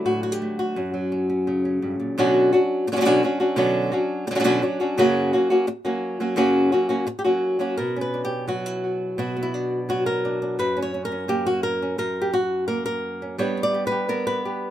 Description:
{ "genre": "flamenco", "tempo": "171 BPM", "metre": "4/4", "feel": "straight", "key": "unclear", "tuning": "A4 = 440 Hz", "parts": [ { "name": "flamenco guitar", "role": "solo", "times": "0.0-14.7 s", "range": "F#2 to D5", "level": "-20 LUFS", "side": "equal", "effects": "none" } ], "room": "light reverb", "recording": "minimal, uncompressed stereo recording", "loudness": "-20 LUFS", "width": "side -12 dB against mid", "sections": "0.0-2.2 A section; 2.2-7.8 B section; 7.8-14.7 C section", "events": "none", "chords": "0.0 D; 0.8 F#; 2.2 Bmadd9; 5.0 F#; 7.8 Bmadd9; 10.6 F#; 13.4 G" }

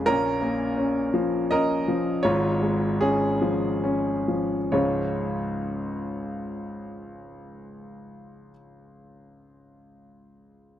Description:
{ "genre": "neoclassical minimalist piano", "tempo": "65-90 BPM", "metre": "3/4", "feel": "rubato", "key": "Db major", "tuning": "A4 = 440 Hz", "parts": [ { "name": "warm grand piano", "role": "solo", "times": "0.0-10.8 s", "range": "F1 to Eb5", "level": "-23 LUFS", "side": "equal", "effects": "none" } ], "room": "little or no reverb", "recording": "dry, close 1970s-style studio recording", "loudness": "-23 LUFS", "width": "side -11 dB against mid", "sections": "0.0-4.8 A section; 4.8-10.1 B section", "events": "slowing down 0.0-4.8", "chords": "0.1 Bbm; 2.2 Db/Ab; 4.8 Db" }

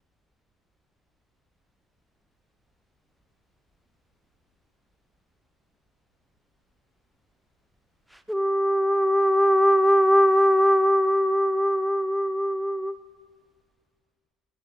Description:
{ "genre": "japanese traditional, Japanese chamber music", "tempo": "free time", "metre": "none", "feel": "none", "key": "unclear", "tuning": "A4 = 439 Hz", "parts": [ { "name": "long shakuhachi", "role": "solo", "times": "8.3-12.9 s", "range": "G4 to A4", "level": "-18 LUFS", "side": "equal", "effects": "none" } ], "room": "little or no reverb", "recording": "close, detailed microphones", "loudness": "-18 LUFS", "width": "side -17 dB against mid", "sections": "0.0-8.3 A section; 8.3-14.6 B section", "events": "slowing down 0.0-8.3", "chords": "none" }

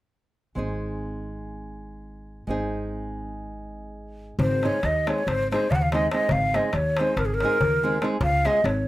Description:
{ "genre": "balkan folk, Balkan wedding band", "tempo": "283 BPM (eighths)", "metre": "9/8", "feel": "straight", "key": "Ab major", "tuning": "A4 = 440 Hz", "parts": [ { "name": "nylon-string guitar", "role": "accompaniment", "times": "0.6-8.6 s", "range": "Ab3 to Ab4", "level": "-30 LUFS", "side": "right 1 dB", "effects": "none" }, { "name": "upright bass", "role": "bass", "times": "0.6-8.9 s", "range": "Ab1 to Eb2", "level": "-29 LUFS", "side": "equal", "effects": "none" }, { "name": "breathy ney", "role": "melody", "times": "4.4-8.9 s", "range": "Ab4 to Gb5", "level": "-23 LUFS", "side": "equal", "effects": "none" }, { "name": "darbuka", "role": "percussion", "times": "4.4-8.8 s", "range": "none", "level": "-29 LUFS", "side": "left 1 dB", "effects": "none" } ], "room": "moderate studio ambience, RT60 0.5 s", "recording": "rough home demo mix", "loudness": "-22 LUFS", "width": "side -16 dB against mid", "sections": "0.6-4.4 A section; 4.4-8.9 B section", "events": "none", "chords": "0.6 Ab; 8.2 Db" }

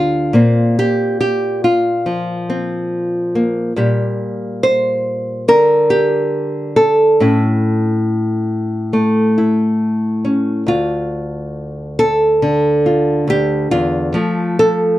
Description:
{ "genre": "folk, solo fingerstyle acoustic guitar", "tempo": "70 BPM", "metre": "4/4", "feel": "straight", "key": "D minor", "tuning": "A4 = 441 Hz", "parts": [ { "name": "nylon-string guitar", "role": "solo", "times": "0.0-15.0 s", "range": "D2 to C5", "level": "-13 LUFS", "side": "equal", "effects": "none" } ], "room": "little or no reverb", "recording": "dry, close 1970s-style studio recording", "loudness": "-13 LUFS", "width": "side -15 dB against mid", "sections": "0.0-15.0 A section", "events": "none", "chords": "0.3 Bbsus2; 3.8 Gm/Bb; 7.2 A; 10.7 Dm; 14.1 F" }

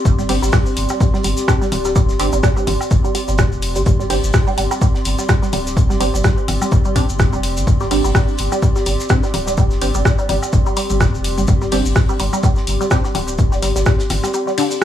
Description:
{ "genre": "minimal techno", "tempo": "126 BPM", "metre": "4/4", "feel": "swing 56% on 16ths", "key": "unclear", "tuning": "A4 = 438 Hz", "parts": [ { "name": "warbly tape-like pad", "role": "texture", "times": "0.0-14.8 s", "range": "C4 to C6", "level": "-24 LUFS", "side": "left 1 dB", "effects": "chorus, built-in reverb, sidechain pumping" }, { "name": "saturated sub bass", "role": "bass", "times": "0.1-14.2 s", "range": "D1 to G1", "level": "-21 LUFS", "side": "equal", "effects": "sidechain pumping" }, { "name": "damped 70s drum kit", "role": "drums", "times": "0.1-14.8 s", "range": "hi-hat, shaker, snare drum", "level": "-33 LUFS", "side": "equal", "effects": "sidechain pumping on hats, high-pass filter on hats, high-pass filter on snare, sidechain pumping on perc, high-pass filter on perc, high-pass filter on room" }, { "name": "electronic kick drum", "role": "drums", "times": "0.1-14.0 s", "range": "none", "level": "-16 LUFS", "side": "equal", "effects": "none" }, { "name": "tube shaker", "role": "percussion", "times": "0.1-14.8 s", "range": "none", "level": "-30 LUFS", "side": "left 3 dB", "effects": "none" }, { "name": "resonant blip pluck", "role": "riff", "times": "0.2-14.6 s", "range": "D3 to D4", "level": "-23 LUFS", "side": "right 1 dB", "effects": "phaser, cassette tape, sidechain pumping, digital delay" }, { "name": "filtered dub chord stab", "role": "stabs", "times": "0.3-13.0 s", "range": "C4 to G4", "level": "-25 LUFS", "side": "right 3 dB", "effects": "phaser, wide subtle chorus, digital delay" }, { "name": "punchy analog drum machine", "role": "drums", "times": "0.3-14.8 s", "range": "hi-hat, rim click", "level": "-23 LUFS", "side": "equal", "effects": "none" }, { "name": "woodblock and congas", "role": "percussion", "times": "0.9-14.3 s", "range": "none", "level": "-28 LUFS", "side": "left 2 dB", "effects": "digital delay" } ], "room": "small room ambience", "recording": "none", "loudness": "-14 LUFS", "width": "side -11 dB against mid", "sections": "0.0-14.8 A section", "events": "none", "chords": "0.0 Gsus4" }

